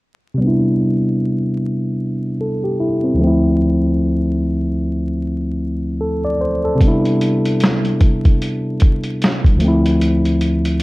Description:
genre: lo-fi hip hop.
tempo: 75 BPM.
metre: 4/4.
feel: swing 59% on 16ths.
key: C major.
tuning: A4 = 440 Hz.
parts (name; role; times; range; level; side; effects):
tine electric piano; accompaniment; 0.3-10.8 s; D2 to D5; -16 LUFS; equal; cassette tape, low-pass filter.
lo-fi sampler-style drum kit; drums; 6.8-10.8 s; hi-hat, kick drum, snare drum; -15 LUFS; equal; overdrive.
room: light reverb.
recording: dark, warm production, vinyl crackle.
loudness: -14 LUFS.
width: side -21 dB against mid.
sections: 0.4-10.8 A section.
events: filter sweep on tine electric piano 0.4-10.8.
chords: 0.4 Cmaj7; 3.2 Dm9; 6.8 Cmaj7; 9.6 Dm9.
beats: | 0.41 1.21 2.01 2.81 | 3.61 4.41 5.21 6.01 | 6.81 7.61 8.41 9.21 | 10.01 10.81.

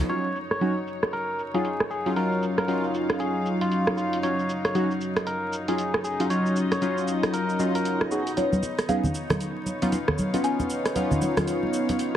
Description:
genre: deep house.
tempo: 116 BPM.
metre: 4/4.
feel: swing 61% on 16ths.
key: Eb minor.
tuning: A4 = 441 Hz.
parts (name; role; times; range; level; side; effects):
warm analog pad; sustained chords; 0.0-12.2 s; Gb3 to Eb5; -35 LUFS; equal; chorus.
warm analog keys; stabs; 0.0-12.2 s; Gb3 to Ab4; -26 LUFS; equal; chorus, phaser.
warm studio string section; texture; 0.0-12.2 s; Gb3 to F5; -34 LUFS; left 1 dB; none.
barky tine electric piano; melody; 0.1-8.3 s; F4 to Db5; -30 LUFS; equal; vintage 12-bit sampler grit, low-pass filter, analog delay.
punchy analog drum machine; drums; 0.1-12.2 s; hi-hat, rim click, shaker; -29 LUFS; right 1 dB; low-pass filter on hats, soft clipping on snare, low-pass filter on snare, low-pass filter on perc.
buzzing marimba with medium mallets; melody; 8.4-11.2 s; Db5 to Ab5; -31 LUFS; left 1 dB; analog delay.
congas; percussion; 8.4-12.0 s; none; -28 LUFS; equal; none.
room: moderate lush hall reverb, RT60 1.7 s, small room ambience.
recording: dense, heavily limited modern master, vinyl crackle.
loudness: -23 LUFS.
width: side -10 dB against mid.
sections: 0.1-12.2 A section.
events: filter sweep on drum 0.1-12.2; filter sweep on analog synth pad 0.1-12.2.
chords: 0.1 Ebm9; 8.1 Db9.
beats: | 0.10 0.61 1.13 1.65 | 2.16 2.68 3.20 3.72 | 4.23 4.75 5.27 5.79 | 6.30 6.82 7.34 7.85 | 8.37 8.89 9.40 9.92 | 10.44 10.96 11.47 11.99.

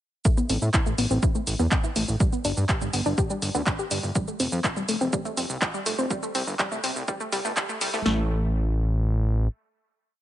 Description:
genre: melodic techno.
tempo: 123 BPM.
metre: 4/4.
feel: straight.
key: A minor.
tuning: A4 = 440 Hz.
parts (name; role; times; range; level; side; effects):
wide unison pluck; arpeggios; 0.3-8.3 s; G3 to G4; -28 LUFS; equal; vintage 12-bit sampler grit, sidechain pumping, dub echo.
punchy analog drum machine; drums; 0.3-8.2 s; kick drum, snare drum; -24 LUFS; equal; none.
punchy analog drum machine; drums; 0.3-8.0 s; handclaps, hi-hat, shaker, toms; -29 LUFS; right 1 dB; sidechain pumping on perc, high-pass filter on perc, sidechain pumping on toms, high-pass filter on toms, sidechain pumping on hats, high-pass filter on hats, high-pass filter on snare.
fat analog bass; bass; 0.5-9.5 s; F1 to A2; -26 LUFS; equal; sidechain pumping.
room: light reverb, digital ambience.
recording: high-pass filter, nothing above 10.6 kHz.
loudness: -23 LUFS.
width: side -13 dB against mid.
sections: 0.3-8.1 build; 8.1-10.2 final chord.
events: build-up 0.3-8.1; filter sweep on synth arpeggio sound 0.3-8.1; filter sweep 0.3-8.1.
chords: 0.3 Amadd9; 2.2 G; 4.2 Fadd9; 6.1 C5; 8.1 N.C..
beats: | 0.25 0.74 1.23 1.72 | 2.20 2.69 3.18 3.67 | 4.15 4.64 5.13 5.62 | 6.11 6.59 7.08 7.57 | 8.06 8.54 9.03.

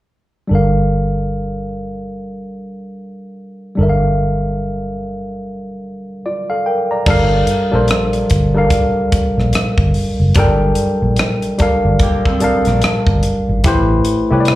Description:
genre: R&B, neo-soul.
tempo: 73 BPM.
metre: 4/4.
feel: swing 60% on 16ths.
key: G minor.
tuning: A4 = 441 Hz.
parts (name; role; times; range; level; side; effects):
tine electric piano; accompaniment; 0.5-14.6 s; G3 to Bb5; -17 LUFS; equal; slapback echo.
vintage muted fingered electric bass; bass; 0.5-14.6 s; F#1 to C2; -16 LUFS; equal; none.
tight funk drum kit; drums; 7.1-14.6 s; crash cymbal, hi-hat, kick drum, rim click; -18 LUFS; equal; none.
electric guitar through a small old amp; second line; 12.0-13.6 s; Bb3 to Bb4; -25 LUFS; right 6 dB; lush chorus, slapback echo.
room: light reverb.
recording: live gig heard through the venue's PA, club reverb.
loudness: -13 LUFS.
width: side -16 dB against mid.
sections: 0.5-7.1 A section; 7.1-14.6 B section.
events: none.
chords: 0.5 Gm9; 13.6 Am9.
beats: | 0.49 1.31 2.14 2.96 | 3.78 4.60 5.42 6.25 | 7.07 7.89 8.71 9.53 | 10.36 11.18 12.00 12.82 | 13.64 14.46.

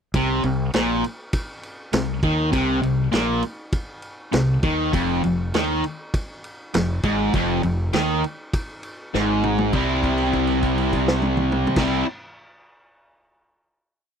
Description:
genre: blues rock power trio and southern rock.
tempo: 100 BPM.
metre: 4/4.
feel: straight.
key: unclear.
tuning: A4 = 440 Hz.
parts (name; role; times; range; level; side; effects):
growling fingered electric bass; bass; 0.1-12.0 s; F1 to Eb2; -26 LUFS; equal; overdrive.
vintage drum kit; drums; 0.1-11.9 s; crash cymbal, kick drum, ride cymbal, snare drum, toms; -27 LUFS; equal; none.
distorted electric guitar; riff; 0.2-12.1 s; F2 to E4; -20 LUFS; equal; distortion.
room: little or no reverb.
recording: dry, close 1970s-style studio recording.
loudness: -20 LUFS.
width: side -7 dB against mid.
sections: 0.1-9.7 riff; 9.7-12.1 final chord.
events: drum fill 9.1-9.7; held note 9.7-11.8.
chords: 0.1 Bbsus24; 4.9 Fm7; 9.7 C.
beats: | 0.14 0.74 1.33 1.93 | 2.53 3.13 3.73 4.33 | 4.93 5.54 6.14 6.74 | 7.34 7.94 8.54 9.14 | 9.74 10.34 10.93 11.53.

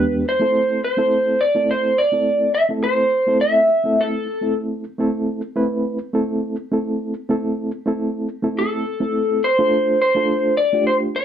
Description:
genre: blues.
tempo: 104 BPM.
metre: 4/4.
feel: straight.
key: A minor.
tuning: A4 = 438 Hz.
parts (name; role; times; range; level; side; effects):
electric guitar through a small old amp; melody; 0.0-4.5, 8.6-11.2 s; A4 to E5; -17 LUFS; equal; analog chorus.
mellow reed electric piano; accompaniment; 0.0-11.2 s; E2 to B4; -22 LUFS; right 1 dB; fast tremolo.
room: light reverb.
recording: none.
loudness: -17 LUFS.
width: side -9 dB against mid.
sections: 0.3-11.2 A section.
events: none.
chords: 0.3 Am; 9.4 Dm.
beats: | 0.26 0.83 1.41 1.98 | 2.55 3.13 3.70 4.28 | 4.85 5.42 6.00 6.57 | 7.15 7.72 8.29 8.87 | 9.44 10.02 10.59 11.16.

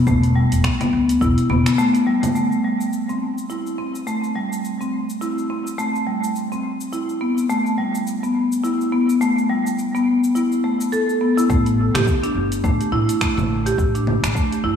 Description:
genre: organic downtempo.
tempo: 105 BPM.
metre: 4/4.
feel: swing 58% on 16ths.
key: A minor.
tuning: A4 = 440 Hz.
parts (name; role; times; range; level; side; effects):
marimba with medium mallets; arpeggios; 0.1-14.8 s; G3 to A4; -19 LUFS; left 1 dB; low-pass filter, diffuse ambient delay.
upright bass; bass; 0.1-1.6, 11.5-14.8 s; E1 to D2; -20 LUFS; equal; none.
deep house drum kit; drums; 0.1-14.6 s; cabasa, congas, finger snaps, hi-hat; -27 LUFS; left 1 dB; overdrive.
electronic kick drum; drums; 0.1-1.3, 11.5-14.5 s; none; -22 LUFS; equal; overdrive.
room: wet lush hall reverb, RT60 2.1 s.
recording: dreamy mix soaked in reverb.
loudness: -17 LUFS.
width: side -8 dB against mid.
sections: 0.0-2.4 A section; 2.4-11.5 B section; 11.5-14.8 C section.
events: none.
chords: 0.0 Em; 2.4 Am7; 6.9 Em; 11.5 A5.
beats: | 0.07 0.64 1.21 1.78 | 2.35 2.92 3.50 4.07 | 4.64 5.21 5.78 6.35 | 6.92 7.50 8.07 8.64 | 9.21 9.78 10.35 10.93 | 11.50 12.07 12.64 13.21 | 13.78 14.35.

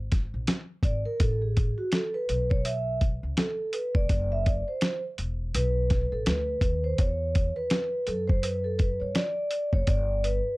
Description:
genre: hip hop, jazz-hop.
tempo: 83 BPM.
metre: 4/4.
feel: swing 60% on 16ths.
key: unclear.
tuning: A4 = 439 Hz.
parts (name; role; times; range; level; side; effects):
upright bass; bass; 0.0-10.4 s; E1 to G2; -30 LUFS; equal; none.
dusty soul sampler-style drum kit; drums; 0.1-10.4 s; hi-hat, kick drum, snare drum; -25 LUFS; equal; overdrive.
vibraphone with soft mallets; accompaniment; 0.8-10.6 s; F#4 to E5; -30 LUFS; right 1 dB; plate reverb.
room: light reverb.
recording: dark, warm production.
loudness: -25 LUFS.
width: side -21 dB against mid.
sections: 0.0-10.6 A section.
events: vibraphone solo 0.0-10.6.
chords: 0.0 G#sus2; 1.2 Asus2; 4.1 D9; 5.5 Asus2; 7.0 Esus2; 9.9 G.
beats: 0.48 | 1.20 1.92 2.65 3.37 | 4.09 4.82 5.54 6.26 | 6.98 7.71 8.43 9.15 | 9.88.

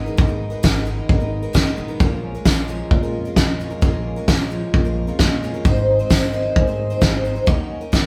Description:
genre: indie folk with a building arrangement.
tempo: 132 BPM.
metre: 4/4.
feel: straight.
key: unclear.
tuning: A4 = 440 Hz.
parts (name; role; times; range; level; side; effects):
fingerpicked steel-string acoustic guitar; accompaniment; 0.0-8.1 s; Eb2 to Bb4; -30 LUFS; equal; none.
picked twelve-string acoustic guitar; accompaniment; 0.0-8.1 s; Ab2 to C5; -28 LUFS; equal; none.
upright bass; bass; 0.0-8.1 s; Ab1 to Bb2; -28 LUFS; equal; none.
loose indie drum kit; drums; 0.2-8.0 s; kick drum, snare drum; -20 LUFS; equal; none.
tambourine; percussion; 0.6-8.0 s; none; -39 LUFS; equal; none.
room: moderate studio reverb, RT60 0.9 s.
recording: band playing live in one room.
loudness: -19 LUFS.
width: mono.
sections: 0.0-8.1 A section.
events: none.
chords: 0.0 Abmadd9; 2.0 Bbm7; 5.6 Ab; 7.5 Ebm7.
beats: | 0.18 0.64 1.09 1.55 | 2.00 2.46 2.91 3.37 | 3.83 4.28 4.74 5.19 | 5.65 6.10 6.56 7.01 | 7.47 7.93.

